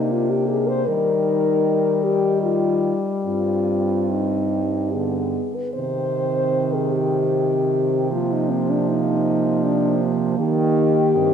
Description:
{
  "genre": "classical, lyrical piece for horn quartet",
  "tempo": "71-82 BPM",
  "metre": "3/4",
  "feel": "rubato",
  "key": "C minor",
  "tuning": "A4 = 440 Hz",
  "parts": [
    { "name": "mellow French horn", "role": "melody", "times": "0.0-11.3 s", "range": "C4 to C5", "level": "-21 LUFS", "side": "left 4 dB", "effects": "none" },
    { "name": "mellow French horn", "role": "second line", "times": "0.0-11.3 s", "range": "Bb3 to Eb4", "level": "-26 LUFS", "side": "right 9 dB", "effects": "none" },
    { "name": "warm French horn", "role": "accompaniment", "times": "0.0-11.3 s", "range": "D3 to Bb3", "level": "-25 LUFS", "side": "equal", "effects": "none" },
    { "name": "warm French horn", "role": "bass", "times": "0.0-11.3 s", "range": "G2 to Eb3", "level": "-26 LUFS", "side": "right 4 dB", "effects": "none" }
  ],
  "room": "wet church reverb, RT60 2.7 s",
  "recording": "dark, warm production",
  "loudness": "-18 LUFS",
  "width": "side -8 dB against mid",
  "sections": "0.0-11.3 A section",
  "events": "none",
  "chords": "0.0 Bb/C; 0.9 Eb; 3.3 Cm/G; 4.9 G; 5.8 Cm; 8.1 Bb5/C; 10.4 Eb",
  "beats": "0.13 | 0.89 1.66 2.44 | 3.26 4.10 4.94 | 5.76 6.57 7.35 | 8.12 8.88 9.64 | 10.39 11.17"
}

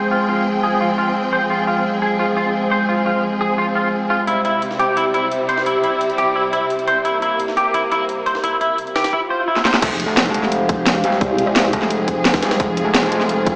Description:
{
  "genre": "dark technical drum and bass",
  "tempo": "173 BPM",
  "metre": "4/4",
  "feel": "straight",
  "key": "F harmonic minor",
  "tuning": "A4 = 439 Hz",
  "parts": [
    { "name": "rich symphonic string section", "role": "sustained chords", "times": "0.0-13.6 s", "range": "C3 to G5", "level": "-22 LUFS", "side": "equal", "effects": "sidechain pumping" },
    { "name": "clean electric guitar", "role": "arpeggios", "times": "0.0-9.7 s", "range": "E4 to C5", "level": "-18 LUFS", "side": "equal", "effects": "ensemble chorus, sidechain pumping, low-pass filter, tape echo" },
    { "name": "sub drop, swell and impact", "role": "sound effects", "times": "0.0-0.1, 9.2-11.2 s", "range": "none", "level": "-30 LUFS", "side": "equal", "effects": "none" },
    { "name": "warbly tape-like pad", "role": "texture", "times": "0.0-13.6 s", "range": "Ab3 to G5", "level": "-22 LUFS", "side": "equal", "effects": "chorus, built-in reverb, sidechain pumping" },
    { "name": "breakbeat sampler-style drum kit", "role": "drums", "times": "4.3-13.5 s", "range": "hi-hat, snare drum", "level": "-27 LUFS", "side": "equal", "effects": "high-pass filter on hats, small room reverb, high-pass filter on snare" },
    { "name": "drum and bass drum kit", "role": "drums", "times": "9.6-13.5 s", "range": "crash cymbal, hi-hat, rim click, snare drum", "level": "-17 LUFS", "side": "equal", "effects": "overdrive, low-pass filter on hats, small room reverb, low-pass filter on cymbals, low-pass filter on snare, low-pass filter on toms" },
    { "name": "metallic wobble bass", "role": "bass", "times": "9.8-13.6 s", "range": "F1", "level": "-20 LUFS", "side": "equal", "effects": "chorus, overdrive" },
    { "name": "electronic kick drum", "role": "drums", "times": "9.8-13.5 s", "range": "none", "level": "-20 LUFS", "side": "equal", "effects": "overdrive, small room reverb" },
    { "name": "formant-sweep wobble bass", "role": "bass", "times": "11.2-11.7 s", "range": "C2", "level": "-19 LUFS", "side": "equal", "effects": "chorus, tube saturation" }
  ],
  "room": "moderate plate reverb, RT60 1.3 s",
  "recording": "played on a big sound system in a bare room, large studio reverb, small speaker sound",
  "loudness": "-15 LUFS",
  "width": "side -28 dB against mid",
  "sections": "0.0-9.8 A section; 9.8-13.6 B section",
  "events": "swell 9.2-9.8; drum fill 9.6; drop 9.8-13.6; impact 9.8-11.2",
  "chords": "0.0 Fm; 4.3 C; 9.8 Fm",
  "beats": "| 0.11 0.46 0.81 1.15 | 1.50 1.85 2.19 2.54 | 2.89 3.23 3.58 3.93 | 4.28 4.62 4.97 5.32 | 5.66 6.01 6.36 6.70 | 7.05 7.40 7.74 8.09 | 8.44 8.78 9.13 9.48 | 9.82 10.17 10.52 10.86 | 11.21 11.56 11.90 12.25 | 12.60 12.95 13.29"
}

